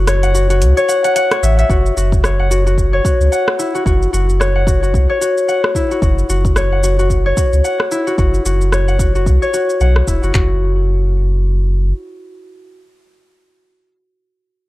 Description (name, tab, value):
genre	organic downtempo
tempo	111 BPM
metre	4/4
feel	swing 58% on 16ths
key	unclear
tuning	A4 = 440 Hz
part	concert harp	arpeggios	0.0-12.8 s	E4 to F#5	-17 LUFS	left 2 dB	analog delay
part	warm sub bass	bass	0.0-11.9 s	E1 to C#2	-14 LUFS	equal	none
part	deep house drum kit	drums	0.1-10.3 s	hi-hat, rim click, shaker	-22 LUFS	right 1 dB	none
part	deep house drum kit	drums	1.7-10.5 s	handclaps, kick drum, toms	-16 LUFS	equal	none
room	little or no reverb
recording	dry, gritty hardware recording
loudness	-12 LUFS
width	side -17 dB against mid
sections	0.0-1.7 A section; 1.7-10.3 B section; 10.3-14.7 C section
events	break 0.0-1.7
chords	0.0 A/F#; 1.7 F#5; 10.3 N.C.